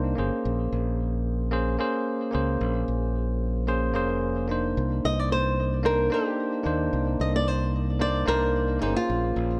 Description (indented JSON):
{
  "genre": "sunset chillout",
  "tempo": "111 BPM",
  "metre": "4/4",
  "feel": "swing 54% on 16ths",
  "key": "C phrygian",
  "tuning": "A4 = 440 Hz",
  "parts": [
    { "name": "bell-like tine electric piano", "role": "accompaniment", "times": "0.0-9.6 s", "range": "Bb3 to C5", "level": "-30 LUFS", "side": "equal", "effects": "vintage 12-bit sampler grit, low-pass filter, digital delay" },
    { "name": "modern bright fingered electric bass", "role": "bass", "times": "0.0-9.6 s", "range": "F1 to Eb2", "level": "-30 LUFS", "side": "equal", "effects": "none" },
    { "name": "flamenco guitar", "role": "melody", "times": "5.1-9.6 s", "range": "Eb4 to Eb5", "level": "-29 LUFS", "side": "equal", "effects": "tape echo" }
  ],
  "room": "light reverb, small room ambience",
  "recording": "none",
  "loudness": "-26 LUFS",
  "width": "mono",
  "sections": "0.0-9.6 A section",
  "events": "none",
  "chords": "0.4 Bbm9; 4.8 Cm9; 9.1 Bbm9",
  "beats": "| 0.44 0.98 1.52 2.06 | 2.60 3.14 3.68 4.22 | 4.76 5.30 5.84 6.39 | 6.93 7.47 8.01 8.55 | 9.09"
}